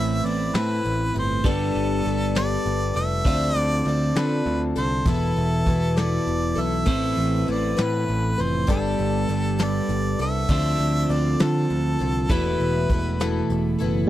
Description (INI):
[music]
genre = folk rock and heartland rock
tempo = 66 BPM (dotted quarters)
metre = 6/8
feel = straight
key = A minor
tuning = A4 = 441 Hz
[part]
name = clear harmonica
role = melody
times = 0.0-13.5 s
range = A4 to E5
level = -28 LUFS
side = right 1 dB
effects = none
[part]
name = picked twelve-string acoustic guitar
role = accompaniment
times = 0.0-14.1 s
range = E2 to B4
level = -29 LUFS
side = left 5 dB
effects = none
[part]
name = twelve-string electric guitar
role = riff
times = 0.0-14.1 s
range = E2 to B4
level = -25 LUFS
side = right 1 dB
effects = phaser
[part]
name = picked electric bass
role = bass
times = 0.0-14.1 s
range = E1 to D3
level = -26 LUFS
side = equal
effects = none
[part]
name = soft brush drum kit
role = drums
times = 0.2-13.9 s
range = hi-hat, kick drum, snare drum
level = -23 LUFS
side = equal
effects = none
[sound]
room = little or no reverb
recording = dry, close 1970s-style studio recording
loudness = -20 LUFS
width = side -13 dB against mid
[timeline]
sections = 0.0-14.1 A section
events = none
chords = 0.0 Amadd9; 1.4 Gadd9; 3.3 Dm7; 5.1 Esus4; 6.9 Amadd9; 8.7 Gadd9; 10.5 Dm7; 12.3 Esus4